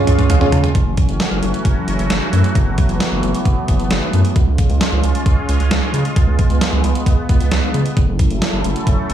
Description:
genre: synth-pop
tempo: 133 BPM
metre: 4/4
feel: straight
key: F# minor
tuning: A4 = 445 Hz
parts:
  - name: mellow FM electric piano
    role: accompaniment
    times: 0.0-0.7 s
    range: C#4 to A5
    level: -18 LUFS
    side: right 1 dB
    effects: chorus
  - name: sweeping resonant pad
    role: sustained chords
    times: 0.0-9.1 s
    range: E3 to A4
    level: -22 LUFS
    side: equal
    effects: chorus
  - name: round analog bass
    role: bass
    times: 0.1-9.1 s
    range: F#1 to C#3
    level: -17 LUFS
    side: right 1 dB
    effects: none
  - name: clean 12-bit digital drum machine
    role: drums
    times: 0.1-9.1 s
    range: hi-hat, kick drum, snare drum, toms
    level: -17 LUFS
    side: right 1 dB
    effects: none
room: little or no reverb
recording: small room reverb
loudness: -14 LUFS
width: side -10 dB against mid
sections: 0.8-9.1 A section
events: drum fill 0.0-0.8; FM electric piano fill 0.1-0.8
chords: 0.0 C#; 0.8 F#m7; 4.4 C#; 8.0 F#m7

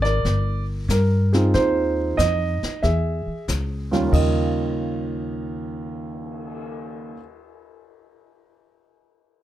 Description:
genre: jazz piano trio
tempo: 93 BPM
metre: 4/4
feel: swing 68% on 8ths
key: Eb mixolydian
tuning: A4 = 439 Hz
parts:
  - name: dark grand piano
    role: melody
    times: 0.0-7.2 s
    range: Eb2 to E5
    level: -23 LUFS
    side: right 2 dB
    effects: none
  - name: upright bass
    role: bass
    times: 0.0-7.1 s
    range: G1 to G2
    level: -23 LUFS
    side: equal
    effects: none
  - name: jazz brush drum kit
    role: drums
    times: 0.0-6.6 s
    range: brushed snare drum, crash cymbal, cymbal swell, hi-hat, kick drum, snare drum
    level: -32 LUFS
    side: left 3 dB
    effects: none
room: light reverb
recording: none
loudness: -20 LUFS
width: side -13 dB against mid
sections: 0.0-4.1 A section; 4.1-6.7 B section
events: none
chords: 0.2 Gm; 1.5 Ab6/Eb; 2.8 E; 4.1 Eb9

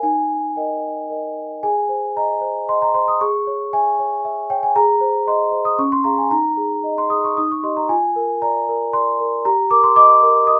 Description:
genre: classical, lullaby for celesta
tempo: 115 BPM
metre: 3/4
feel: straight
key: Ab major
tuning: A4 = 438 Hz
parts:
  - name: large celesta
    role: solo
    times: 0.0-10.6 s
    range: Db4 to Eb6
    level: -18 LUFS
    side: equal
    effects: none
room: light reverb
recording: rough home demo mix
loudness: -18 LUFS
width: mono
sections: 0.0-1.6 A section; 1.6-10.6 A section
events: none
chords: 0.0 Eb; 1.6 Ab; 3.2 Dbm/Ab; 4.7 Ab; 5.8 Db; 6.3 Ebsus4; 7.4 Eb; 7.9 Bb7/F; 9.4 Eb/G

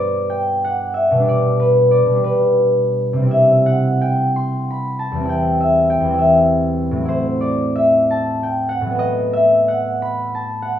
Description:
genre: classical, solo harp piece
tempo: 52-69 BPM (dotted quarters)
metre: 6/8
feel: rubato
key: unclear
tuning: A4 = 439 Hz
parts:
  - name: concert harp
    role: solo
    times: 0.0-10.8 s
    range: E2 to C6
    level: -14 LUFS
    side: equal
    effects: none
room: light reverb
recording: close, detailed microphones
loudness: -14 LUFS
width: side -10 dB against mid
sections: 0.0-10.8 A section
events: none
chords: 0.0 G; 1.3 G/B; 3.3 C; 5.3 C/E; 7.1 F#m7b5/A; 9.0 B7/A

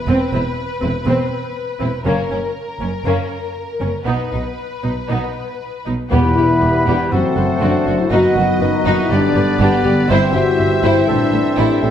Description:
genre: cinematic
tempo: 121 BPM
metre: 4/4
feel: straight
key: E minor from 6.1 s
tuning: A4 = 440 Hz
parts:
  - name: warm symphonic violin section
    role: melody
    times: 0.0-11.9 s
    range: A#4 to E5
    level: -26 LUFS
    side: left 4 dB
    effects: none
  - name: rich symphonic violin section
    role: second line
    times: 0.1-11.9 s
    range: A#3 to C5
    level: -25 LUFS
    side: left 1 dB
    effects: none
  - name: clear symphonic viola section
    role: accompaniment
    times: 0.1-11.9 s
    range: C4 to C5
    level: -24 LUFS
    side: right 1 dB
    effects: none
  - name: rich symphonic cello section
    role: bass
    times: 0.1-11.9 s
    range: E2 to B2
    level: -23 LUFS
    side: right 2 dB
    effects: none
  - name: rich symphonic double bass section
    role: bass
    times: 0.1-11.9 s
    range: E1 to B1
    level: -22 LUFS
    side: right 3 dB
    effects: none
  - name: silver concert flute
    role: second line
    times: 6.1-11.9 s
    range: D5 to B5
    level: -25 LUFS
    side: left 1 dB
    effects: none
  - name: warm clarinet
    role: second line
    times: 6.1-11.9 s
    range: F#4 to A4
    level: -27 LUFS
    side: left 1 dB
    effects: none
  - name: warm oboe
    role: second line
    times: 6.1-11.9 s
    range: A4 to C5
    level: -26 LUFS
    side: equal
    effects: none
  - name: clear trombone section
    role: sustained chords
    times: 6.1-11.9 s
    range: D3 to C4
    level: -24 LUFS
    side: right 4 dB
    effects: none
  - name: dark French horn section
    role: sustained chords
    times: 6.1-11.9 s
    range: B3 to F#4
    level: -18 LUFS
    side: left 2 dB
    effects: none
  - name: concert harp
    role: arpeggios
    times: 6.1-11.9 s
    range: E2 to E5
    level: -23 LUFS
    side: left 5 dB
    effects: none
  - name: timpani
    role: percussion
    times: 6.1-6.8 s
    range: E2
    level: -22 LUFS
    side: equal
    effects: none
room: wet recital hall reverb, RT60 1.6 s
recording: none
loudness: -14 LUFS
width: side -9 dB against mid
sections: 0.0-6.1 A section; 6.1-11.9 B section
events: build-up 0.0-6.1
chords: 0.1 Cmaj7/E; 2.1 F#; 4.1 B; 6.1 Em; 7.1 F#dim; 8.1 B/F#; 9.1 G; 10.1 C/G; 11.1 Am

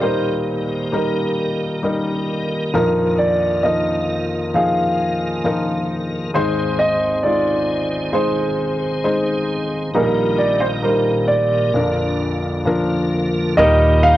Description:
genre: pop ballad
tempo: 66 BPM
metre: 4/4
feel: straight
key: Eb major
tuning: A4 = 440 Hz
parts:
  - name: warm concert grand piano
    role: melody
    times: 0.0-14.2 s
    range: Bb4 to F5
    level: -19 LUFS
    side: right 1 dB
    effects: cassette tape
  - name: felt-muted upright piano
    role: accompaniment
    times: 0.0-14.2 s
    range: Ab1 to C5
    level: -20 LUFS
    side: left 2 dB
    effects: none
  - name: tonewheel organ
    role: sustained chords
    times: 0.0-14.2 s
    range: Bb2 to C5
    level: -24 LUFS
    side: right 1 dB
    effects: chorus vibrato, slow rotary speaker
  - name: direct-recorded clean electric guitar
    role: arpeggios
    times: 13.6-14.2 s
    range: Eb3 to G4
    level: -25 LUFS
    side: right 3 dB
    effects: spring reverb
  - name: upright bass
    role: bass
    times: 13.6-14.2 s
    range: Eb2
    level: -16 LUFS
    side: equal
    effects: none
room: light reverb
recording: home recording on cassette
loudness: -16 LUFS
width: side -14 dB against mid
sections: 0.0-13.6 A section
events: none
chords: 0.0 Eb; 2.7 Bbsus4; 6.3 Ab; 9.9 Eb/Bb; 11.7 Bb; 13.6 Eb

